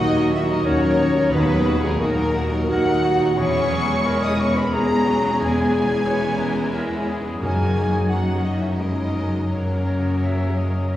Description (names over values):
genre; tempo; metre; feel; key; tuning
cinematic; 88 BPM; 3/4; rubato; unclear; A4 = 440 Hz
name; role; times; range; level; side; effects
rich studio violin section; melody; 0.0-11.0 s; G#4 to D#6; -29 LUFS; left 2 dB; none
bright clarinet; second line; 0.0-11.0 s; F#4 to C#5; -31 LUFS; equal; none
mellow hollow silver concert flute; second line; 0.0-11.0 s; G#4 to D#6; -28 LUFS; left 1 dB; none
rich studio violin section; second line; 0.0-11.0 s; C#4 to B4; -31 LUFS; left 1 dB; none
dark grand piano; accompaniment; 0.0-11.0 s; D#2 to G#4; -27 LUFS; equal; none
rich studio viola section; accompaniment; 0.0-11.0 s; D#3 to C#4; -28 LUFS; equal; none
mellow French horn section; sustained chords; 0.0-11.0 s; G#3 to D#5; -25 LUFS; left 1 dB; none
concert harp; arpeggios; 0.0-11.0 s; F#2 to D#5; -30 LUFS; left 1 dB; none
rich studio cello section; bass; 0.0-11.0 s; D#2 to F#2; -26 LUFS; right 1 dB; none
rich symphonic double bass section; bass; 0.0-11.0 s; E1 to D#2; -26 LUFS; right 1 dB; none
timpani; percussion; 7.4-8.4 s; none; barely audible; none; none
bright oboe; second line; 10.2-11.0 s; D#5 to E5; -34 LUFS; right 1 dB; none
room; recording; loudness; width
wet scoring stage reverb, RT60 1.8 s; heard from further back in the room, studio reverb; -18 LUFS; side -13 dB against mid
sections
0.0-11.0 A section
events
none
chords
0.0 D#m; 3.4 C#m/E; 7.4 F#add9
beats
0.66 | 1.33 2.00 2.70 | 3.38 4.06 4.73 | 5.40 6.06 6.74 | 7.42 8.09 8.78 | 9.50 10.22 10.93